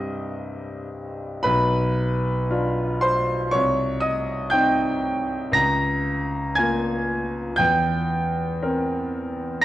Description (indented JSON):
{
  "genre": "classical, romantic nocturne for solo piano",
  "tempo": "58 BPM",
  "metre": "4/4",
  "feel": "rubato",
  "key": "unclear",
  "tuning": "A4 = 440 Hz",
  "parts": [
    { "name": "clear concert grand piano", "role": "solo", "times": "0.0-9.6 s", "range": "B1 to Bb6", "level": "-21 LUFS", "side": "equal", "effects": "none" }
  ],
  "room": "wet recital hall reverb, RT60 1.6 s",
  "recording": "worn, warbling old tape, cassette tape, warbly pitch drift",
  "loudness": "-20 LUFS",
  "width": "side -14 dB against mid",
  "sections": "0.0-9.6 A section",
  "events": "none",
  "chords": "0.0 Cm; 1.5 Bdim; 3.5 Cm; 5.5 Bbm/Db; 7.6 C7/E",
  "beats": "0.40 | 1.45 2.50 3.54 4.52 | 5.54 6.56 7.58 8.61 | 9.63"
}